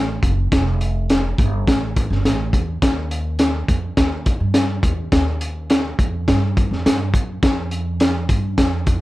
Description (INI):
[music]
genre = uptempo 1960s-style soul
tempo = 104 BPM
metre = 4/4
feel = straight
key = unclear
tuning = A4 = 436 Hz
[part]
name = upright bass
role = bass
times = 0.0-8.9 s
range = F1 to G2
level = -21 LUFS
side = equal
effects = none
[part]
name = crunchy breakbeat drum kit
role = drums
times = 0.2-9.0 s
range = hi-hat, kick drum, snare drum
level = -18 LUFS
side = equal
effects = none
[sound]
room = little or no reverb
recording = none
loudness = -16 LUFS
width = side -17 dB against mid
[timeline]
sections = 0.0-9.0 A section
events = none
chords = none